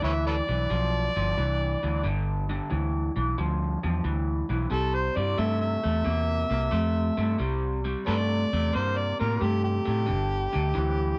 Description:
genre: electric blues shuffle.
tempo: 90 BPM.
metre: 4/4.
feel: swing 68% on 8ths.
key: unclear.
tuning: A4 = 438 Hz.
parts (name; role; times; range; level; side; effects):
overdriven harmonica; second line; 0.0-11.2 s; G4 to E5; -32 LUFS; equal; none.
electric guitar through a small old amp; riff; 0.0-11.2 s; G2 to Bb3; -31 LUFS; equal; subtle chorus.
vintage muted fingered electric bass; bass; 0.0-11.1 s; G1 to A2; -30 LUFS; equal; none.
room: light reverb.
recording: none.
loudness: -27 LUFS.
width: mono.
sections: 0.0-11.2 A section.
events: harmonica solo 0.0-11.2.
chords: 0.0 G6; 4.7 C13; 10.1 G5.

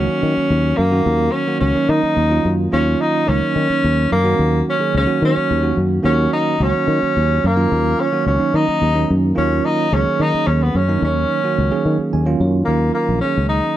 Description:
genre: electric jazz fusion.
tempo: 72 BPM (dotted quarters).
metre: 6/8.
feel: straight.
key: Eb minor.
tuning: A4 = 440 Hz.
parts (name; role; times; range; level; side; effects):
clear tenor saxophone; melody; 0.0-13.8 s; Bb3 to Eb4; -18 LUFS; equal; none.
bell-like tine electric piano; accompaniment; 0.0-13.8 s; Eb3 to Ab5; -20 LUFS; right 4 dB; fast stereo tremolo.
fretless electric bass; bass; 0.0-13.6 s; Bb1 to Eb3; -18 LUFS; left 1 dB; none.
room: little or no reverb.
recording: dry, close 1970s-style studio recording.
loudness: -14 LUFS.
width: side -13 dB against mid.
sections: 0.0-12.7 A section; 12.7-13.8 B section.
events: tine electric piano fill 11.9-12.7.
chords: 0.0 Ebm7; 12.7 Ebm9.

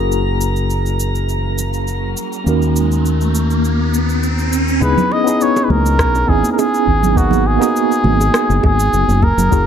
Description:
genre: sunset chillout.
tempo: 102 BPM.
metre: 4/4.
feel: straight.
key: C# dorian.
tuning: A4 = 440 Hz.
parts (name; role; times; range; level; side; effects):
tine electric piano; accompaniment; 0.0-9.7 s; A#3 to A#4; -19 LUFS; moving between left 8 dB and right 8 dB; medium stereo tremolo, auto-pan, ping-pong delay.
fingered electric bass; bass; 0.0-9.6 s; F#1 to D#2; -17 LUFS; equal; none.
drifting glass-harmonics texture; texture; 0.0-4.8 s; A#4 to A#5; -27 LUFS; left 2 dB; chorus, built-in reverb.
electronic shaker and rim click; drums; 0.1-9.6 s; none; -25 LUFS; equal; overdrive.
riser; sound effects; 1.4-4.8 s; none; -22 LUFS; equal; none.
trumpet with cup mute; melody; 4.8-9.7 s; F#4 to D#5; -17 LUFS; equal; ping-pong delay.
electronic kick drum; drums; 4.8-9.6 s; none; -17 LUFS; equal; none.
congas and bongos; percussion; 5.0-9.5 s; none; -21 LUFS; right 3 dB; none.
room: light reverb, digital ambience.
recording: dark, warm production.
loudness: -13 LUFS.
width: side -8 dB against mid.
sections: 0.0-4.8 A section; 4.8-9.7 B section.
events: riser 1.4-4.8.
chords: 0.0 F#7; 2.5 D#m7; 4.8 C#m7; 7.2 G#m7.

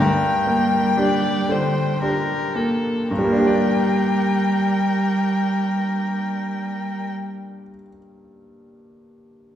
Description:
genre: classical, slow romantic movement for piano quartet.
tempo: 53-61 BPM.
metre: 3/4.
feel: rubato.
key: G minor.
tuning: A4 = 441 Hz.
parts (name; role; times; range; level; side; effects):
rich violin; melody; 0.0-7.1 s; G5; -25 LUFS; left 5 dB; none.
dark violin; second line; 0.0-7.1 s; A4 to D5; -28 LUFS; left 2 dB; none.
rich cello; second line; 0.0-7.1 s; G3; -23 LUFS; right 3 dB; none.
bright grand piano; accompaniment; 0.0-9.6 s; G2 to D5; -22 LUFS; equal; none.
room: wet recital hall reverb, RT60 1.6 s.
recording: heard from further back in the room.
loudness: -18 LUFS.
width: side -10 dB against mid.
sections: 0.0-3.1 A section; 3.1-6.3 B section.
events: slowing down 0.0-3.1.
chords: 0.0 Gm.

